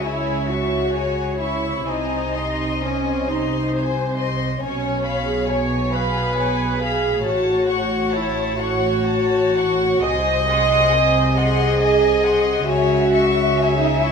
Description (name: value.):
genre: classical, slow romantic movement for string orchestra.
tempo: 40-46 BPM (dotted quarters).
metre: 6/8.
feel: rubato.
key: C# minor.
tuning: A4 = 440 Hz.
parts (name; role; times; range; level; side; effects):
dark symphonic violin section; melody; 0.0-14.1 s; G#4 to E5; -26 LUFS; left 4 dB; none.
warm studio violin section; second line; 0.0-14.1 s; B#4 to C#6; -25 LUFS; left 5 dB; none.
warm studio viola section; accompaniment; 0.0-14.1 s; C#4 to D#5; -20 LUFS; right 1 dB; none.
dark symphonic double bass section; bass; 0.0-14.1 s; A1 to C#2; -26 LUFS; right 2 dB; none.
warm symphonic cello section; bass; 0.0-14.1 s; A2 to C#3; -26 LUFS; right 3 dB; none.
room: wet recital hall reverb, RT60 1.7 s.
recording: none.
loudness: -17 LUFS.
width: side -6 dB against mid.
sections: 0.0-14.1 A section.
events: none.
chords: 0.0 C#m; 1.9 G#/B#; 4.6 C#7/B; 7.2 F#m/A; 10.0 G#7/B#; 12.7 C#m.